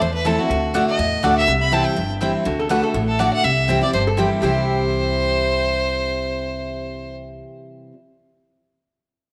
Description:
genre	bluegrass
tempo	245 BPM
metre	4/4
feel	swing 54% on 8ths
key	C major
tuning	A4 = 441 Hz
part	clear fiddle	melody	0.0-7.1 s	F#4 to B5	-24 LUFS	equal	none
part	picked steel-string acoustic guitar	accompaniment	0.0-7.9 s	E2 to F#4	-24 LUFS	equal	none
part	upright bass	bass	0.0-7.4 s	G1 to E2	-28 LUFS	equal	none
part	mandolin	stabs	0.2-7.9 s	A3 to A5	-28 LUFS	equal	none
part	lap resonator guitar	second line	2.5-7.4 s	F#4 to B4	-29 LUFS	equal	none
room	moderate echo chamber reverb, RT60 1.9 s, small room ambience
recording	none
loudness	-20 LUFS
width	mono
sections	0.0-2.5 A section; 2.5-4.4 B section; 4.4-6.4 C section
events	none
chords	0.0 Am; 0.5 D; 1.5 C; 2.5 D; 3.4 C

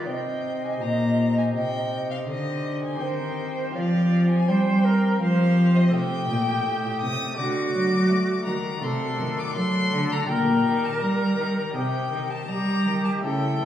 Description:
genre	classical, baroque-style sonata movement with continuo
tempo	82 BPM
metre	4/4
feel	straight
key	C minor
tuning	A4 = 439 Hz
part	warm violin	melody	0.0-13.7 s	Eb5 to Eb6	-31 LUFS	left 5 dB	none
part	silver concert flute	second line	0.0-13.7 s	F#4 to Eb5	-29 LUFS	right 2 dB	none
part	pipe organ, sparkling flutes	accompaniment	0.0-13.7 s	A2 to E5	-28 LUFS	left 1 dB	none
part	rich cello	bass	0.0-13.7 s	A2 to A3	-24 LUFS	equal	none
room	wet recital hall reverb, RT60 1.7 s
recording	heard from further back in the room, small room ambience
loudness	-21 LUFS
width	side -11 dB against mid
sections	0.0-13.7 A section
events	none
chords	0.1 Cm; 3.0 Cm/Eb; 5.9 Am7b5; 7.4 D; 8.8 D7/C; 10.3 Gm/Bb; 11.8 Cm

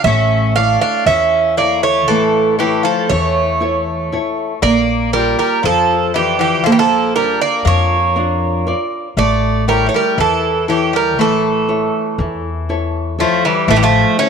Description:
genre	greek folk, Greek bouzouki band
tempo	119 BPM (eighths)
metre	9/8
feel	straight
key	A phrygian dominant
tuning	A4 = 438 Hz
part	Greek bouzouki	melody	0.0-14.3 s	G3 to F5	-16 LUFS	right 7 dB	none
part	Greek bouzouki	second line	0.0-14.3 s	E3 to D4	-19 LUFS	left 12 dB	none
part	nylon-string guitar	accompaniment	0.0-14.3 s	E3 to D5	-20 LUFS	right 1 dB	none
part	upright bass	bass	0.0-14.0 s	A1 to F2	-20 LUFS	left 2 dB	none
room	moderate plate reverb, RT60 2.9 s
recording	1960s-style stereo with parts hard left and right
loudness	-12 LUFS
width	side -6 dB against mid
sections	0.0-13.7 A section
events	none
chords	0.0 A; 4.6 Bb; 9.2 A

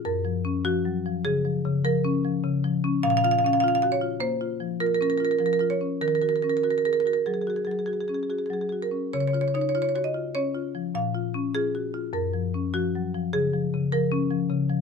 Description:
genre	classical, contemporary piece for solo marimba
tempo	100 BPM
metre	5/4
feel	rubato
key	unclear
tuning	A4 = 440 Hz
part	marimba with medium hard mallets	solo	0.0-14.8 s	Gb2 to F5	-23 LUFS	equal	none
room	light reverb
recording	none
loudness	-23 LUFS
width	side -5 dB against mid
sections	0.0-14.8 A section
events	none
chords	0.0 Gbmaj7; 3.0 Bbmadd9; 6.0 Ebm7; 9.1 Dbadd9; 11.0 Bbm; 12.2 Gbmaj7

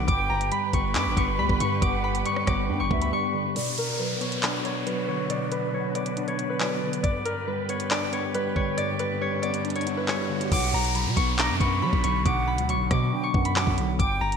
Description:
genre	hip hop, drill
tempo	138 BPM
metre	4/4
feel	half-time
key	B minor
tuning	A4 = 442 Hz
part	concert harp	melody	0.0-14.4 s	A#4 to D6	-28 LUFS	left 1 dB	low-pass filter, ping-pong delay
part	mellow silver concert flute	second line	0.0-3.1, 10.5-14.4 s	E5 to B5	-32 LUFS	right 5 dB	ping-pong delay
part	mellow tine electric piano	accompaniment	0.0-14.4 s	G2 to D4	-29 LUFS	equal	medium stereo tremolo, low-pass filter
part	muted studio string section	sustained chords	0.0-10.5 s	D3 to B4	-36 LUFS	equal	low-pass filter
part	long sustained 808-style bass	bass	0.0-3.1, 10.5-14.4 s	G1 to F#3	-28 LUFS	equal	none
part	drill drum kit	drums	0.1-14.4 s	crash cymbal, handclaps, hi-hat, kick drum, rim click	-28 LUFS	equal	vintage 12-bit sampler grit, gated reverb
part	downlifter and riser	sound effects	3.6-14.0 s	none	-34 LUFS	equal	none
room	moderate lush hall reverb, RT60 2.0 s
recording	bright 1980s-style digital production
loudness	-23 LUFS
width	side -6 dB against mid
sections	0.0-3.6 A section; 3.6-10.5 B section; 10.5-14.4 A section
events	drums muted 3.1-3.6; filter sweep 3.6-10.5; kick muted 8.8-10.5; riser 8.8-10.5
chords	0.1 G; 3.6 Bm; 7.0 G; 10.5 Bm

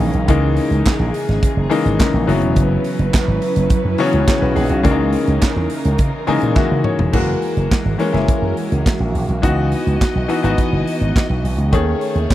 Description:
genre	disco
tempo	105 BPM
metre	4/4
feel	straight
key	C# dorian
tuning	A4 = 440 Hz
part	bright grand piano	accompaniment	0.0-12.3 s	C#3 to G#5	-19 LUFS	left 4 dB	none
part	warm studio string section	sustained chords	0.0-12.3 s	D#3 to D#5	-23 LUFS	right 3 dB	none
part	slap bass with an envelope filter	bass	0.0-12.3 s	E1 to C#3	-18 LUFS	right 1 dB	none
part	modern studio drum kit	drums	0.0-12.3 s	crash cymbal, handclaps, hi-hat, kick drum, snare drum, toms	-18 LUFS	right 1 dB	none
part	group handclap	percussion	0.9-6.7 s	none	-32 LUFS	right 6 dB	none
room	little or no reverb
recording	dry, close 1970s-style studio recording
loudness	-14 LUFS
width	side -14 dB against mid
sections	0.0-7.1 A section; 7.1-12.3 B section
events	grand piano fill 6.0-7.1; drum fill 6.6-7.1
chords	0.0 C#m69; 2.3 F#7sus4; 4.8 C#m69; 7.1 F#9; 9.4 C#m11; 11.7 B13/D# (rootless)

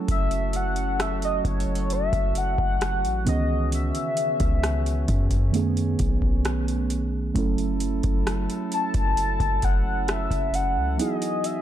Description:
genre	contemporary R&B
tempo	66 BPM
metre	4/4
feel	straight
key	F# dorian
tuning	A4 = 440 Hz
part	muted felt-like synth keys	accompaniment	0.0-11.6 s	D#3 to A4	-30 LUFS	right 6 dB	chorus
part	mellow brass ensemble	sustained chords	0.0-11.6 s	C#3 to D#5	-34 LUFS	left 2 dB	none
part	warm velvety synth lead	melody	0.1-11.6 s	C#5 to A5	-27 LUFS	left 2 dB	chorus, phaser
part	warm 808-style bass	bass	0.1-11.0 s	F#1 to F#2	-26 LUFS	equal	none
part	booming analog drum machine	drums	0.1-11.6 s	hi-hat, kick drum, rim click	-26 LUFS	equal	overdrive
room	little or no reverb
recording	dark, warm production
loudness	-22 LUFS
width	side -11 dB against mid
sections	0.0-7.4 A section; 7.4-11.6 B section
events	none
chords	0.0 F#m7; 3.3 C#m9; 5.5 B13; 7.4 F#m7; 11.0 Emaj9

